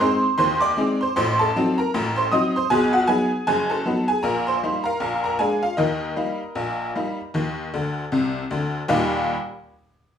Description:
ragtime piano; 78 BPM; 2/4; swing 59% on 16ths; A4 = 441 Hz
tack piano; solo; 0.0-9.3 s; F#1 to Eb6; -20 LUFS; equal
moderate studio reverb, RT60 0.7 s; band playing live in one room, studio ambience; -20 LUFS; side -8 dB against mid
0.0-8.9 A section; 8.9-10.2 B section
honky-tonk piano fill 7.7-8.9
0.0 Ab; 1.2 Adim7; 2.7 B7; 4.2 Eb/Bb; 5.0 Bb7; 5.8 Eb

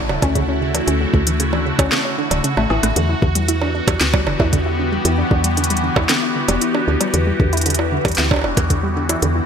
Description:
IDM; 115 BPM; 4/4; straight; E dorian; A4 = 440 Hz
phased analog pad; sustained chords; 0.0-9.5 s; D3 to A4; -21 LUFS; left 1 dB; phaser, chorus
warbly dusty pluck; arpeggios; 0.0-9.4 s; C#3 to E4; -23 LUFS; right 1 dB; chorus, digital delay
woody FM bass; bass; 0.0-9.4 s; D1 to E2; -20 LUFS; equal
organic electronic drum kit; drums; 0.1-9.3 s; bongos, hi-hat, rim click, snare drum; -21 LUFS; right 2 dB
electronic kick drum; drums; 0.2-8.8 s; -18 LUFS; equal
moderate lush hall reverb, RT60 2.0 s, digital ambience; bright 1980s-style digital production; -15 LUFS; side -7 dB against mid
0.0-9.5 A section
drum fill 2.6-3.0
0.0 Dmaj9; 3.0 Em7

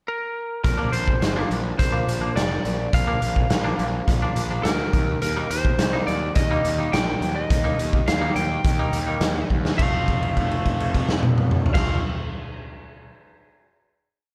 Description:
quiet-loud alternative rock; 105 BPM; 4/4; straight; A4 = 440 Hz
lightly driven lead guitar; melody; 0.1-12.0 s; Bb4 to G5; -30 LUFS; equal; slapback echo
fuzz picked electric bass; bass; 0.6-12.0 s; F1 to Eb2; -29 LUFS; equal; overdrive
raw garage drum kit; drums; 0.6-11.9 s; crash cymbal, hi-hat, kick drum, snare drum, toms; -25 LUFS; equal
twangy electric guitar; arpeggios; 0.8-12.0 s; F2 to Eb4; -33 LUFS; equal; slapback echo
light reverb, small room reverb; -22 LUFS; mono
0.0-0.6 pickup bar; 0.6-9.8 verse; 9.8-12.1 final chord
drum fill 9.5; held note 9.8-11.7
0.0 N.C.; 0.6 Bb; 4.9 Eb; 9.8 F

